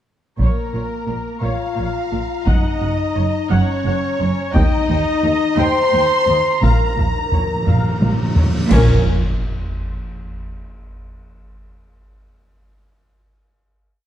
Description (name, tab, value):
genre	cinematic, epic orchestral film score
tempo	58 BPM (dotted quarters)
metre	6/8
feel	straight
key	Bb minor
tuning	A4 = 440 Hz
part	warm symphonic violin section	melody	0.4-9.1 s	Db4 to C6	-28 LUFS	left 3 dB	none
part	warm symphonic violin section	second line	0.4-9.1 s	Bb4 to C6	-29 LUFS	left 1 dB	none
part	warm symphonic viola section	accompaniment	0.4-9.1 s	Bb3 to Bb5	-29 LUFS	left 1 dB	none
part	warm French horn section	sustained chords	0.4-9.0 s	Bb3 to C5	-22 LUFS	left 3 dB	none
part	mellow trumpet section	stabs	0.4-9.0 s	Db4 to C6	-26 LUFS	right 2 dB	none
part	warm symphonic cello section	bass	0.4-9.1 s	Eb2 to Bb2	-23 LUFS	right 2 dB	none
part	warm symphonic double bass section	bass	0.4-9.1 s	Gb1 to Eb2	-23 LUFS	right 2 dB	none
part	solo taiko drums	drums	0.4-10.1 s	none	-18 LUFS	equal	none
part	cymbal swell, clash cymbals and concert bass drum	percussion	4.6-10.1 s	none	-24 LUFS	equal	none
part	timpani	percussion	6.6-9.0 s	Bb2	-24 LUFS	right 1 dB	none
part	cymbal swell and impact	sound effects	8.2-10.8 s	none	-31 LUFS	equal	none
room	moderate scoring stage reverb, RT60 1.5 s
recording	dark, warm production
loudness	-15 LUFS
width	side -11 dB against mid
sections	0.4-8.7 theme; 8.7-10.8 final chord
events	timpani fill 6.6-8.7; drum fill 7.7-8.7; cymbal swell 8.2-8.7; band accent 8.7-9.4; impact 8.7-10.8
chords	0.4 Bbm; 2.5 Gb; 4.6 Eb; 6.6 Bb5; 8.7 Bbm